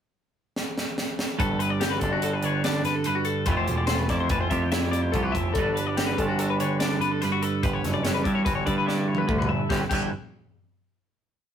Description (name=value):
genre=math rock and midwest emo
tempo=144 BPM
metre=5/4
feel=straight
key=G lydian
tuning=A4 = 440 Hz
part: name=crisp fusion drum kit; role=drums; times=0.6-10.0 s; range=crash cymbal, hi-hat, kick drum, snare drum, toms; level=-29 LUFS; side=equal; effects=none
part: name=twelve-string electric guitar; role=accompaniment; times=1.4-10.1 s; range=G2 to B4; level=-27 LUFS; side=right 5 dB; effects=none
part: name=twelve-string electric guitar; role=arpeggios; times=1.4-10.1 s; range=F#4 to E5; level=-28 LUFS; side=left 7 dB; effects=none
part: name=growling picked electric bass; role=bass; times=1.4-10.1 s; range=E1 to G2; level=-28 LUFS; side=equal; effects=overdrive
room=moderate studio reverb, RT60 0.6 s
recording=rough rehearsal-room recording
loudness=-23 LUFS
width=side -9 dB against mid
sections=0.0-1.4 pickup bar; 1.4-9.7 A section; 9.7-11.5 final chord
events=drum fill 0.6-1.4, 8.9-9.7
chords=0.0 N.C.; 1.4 Gmaj9; 3.5 Fmaj9; 5.6 Gmaj9; 7.6 Gmaj13; 9.7 G6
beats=0.15 0.56 0.98 | 1.40 1.81 2.23 2.65 3.06 | 3.48 3.90 4.31 4.73 5.14 | 5.56 5.98 6.39 6.81 7.22 | 7.64 8.05 8.46 8.88 9.29 | 9.71